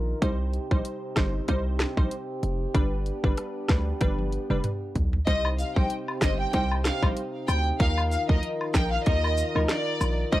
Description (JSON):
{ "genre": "dancehall", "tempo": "95 BPM", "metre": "4/4", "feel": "swing 56% on 16ths", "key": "C minor", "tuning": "A4 = 441 Hz", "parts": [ { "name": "mellow brass ensemble", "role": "sustained chords", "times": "0.0-10.4 s", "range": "C3 to Bb4", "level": "-34 LUFS", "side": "equal", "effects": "stereo widening, sidechain pumping" }, { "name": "hard-hitting 808-style bass", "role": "bass", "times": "0.0-10.4 s", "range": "F1 to Eb2", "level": "-27 LUFS", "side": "equal", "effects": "none" }, { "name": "wavetable chord stab", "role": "accompaniment", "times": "0.2-10.4 s", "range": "F3 to C5", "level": "-32 LUFS", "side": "equal", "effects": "none" }, { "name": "island pop drum kit", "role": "drums", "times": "0.2-10.4 s", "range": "hi-hat, kick drum, rim click, snare drum, toms", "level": "-25 LUFS", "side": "equal", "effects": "none" }, { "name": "warm symphonic violin section", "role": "melody", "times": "5.3-10.4 s", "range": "D5 to G5", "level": "-29 LUFS", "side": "equal", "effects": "tape echo" }, { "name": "woodblock and cabasa", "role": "percussion", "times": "5.4-10.2 s", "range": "none", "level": "-33 LUFS", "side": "left 2 dB", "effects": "none" } ], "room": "small room ambience", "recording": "dry, gritty hardware recording, cassette tape", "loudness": "-24 LUFS", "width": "side -15 dB against mid", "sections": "0.0-5.3 A section; 5.3-10.4 B section", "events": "drum fill 4.0-5.3", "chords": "0.2 Cm; 2.7 G; 5.3 Cm; 7.8 Ebsus2" }